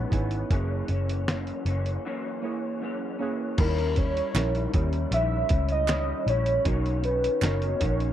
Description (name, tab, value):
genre	indie pop, bedroom pop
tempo	78 BPM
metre	4/4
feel	straight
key	unclear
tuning	A4 = 439 Hz
part	electric guitar through a small old amp	accompaniment	0.0-8.1 s	F#2 to E4	-32 LUFS	left 4 dB	ensemble chorus, vibrato effect
part	warm analog keys	accompaniment	0.0-8.1 s	A#3 to A#4	-35 LUFS	right 6 dB	chorus, cassette tape
part	vintage muted picked electric bass	bass	0.0-8.1 s	F#1 to D#2	-27 LUFS	equal	none
part	lo-fi sampler-style drum kit	drums	0.1-8.1 s	crash cymbal, hi-hat, kick drum, snare drum	-28 LUFS	equal	none
part	warm velvety synth lead	melody	3.6-8.1 s	A#4 to E5	-28 LUFS	right 1 dB	lush chorus
part	group handclap	percussion	4.4-7.6 s	none	-34 LUFS	right 12 dB	none
room	little or no reverb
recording	dry, close 1970s-style studio recording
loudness	-24 LUFS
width	side -11 dB against mid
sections	0.0-3.6 A section; 3.6-8.1 B section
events	break 2.0-3.6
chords	0.0 C#m7; 0.5 F#7; 3.6 D#7b9; 6.7 Bmaj9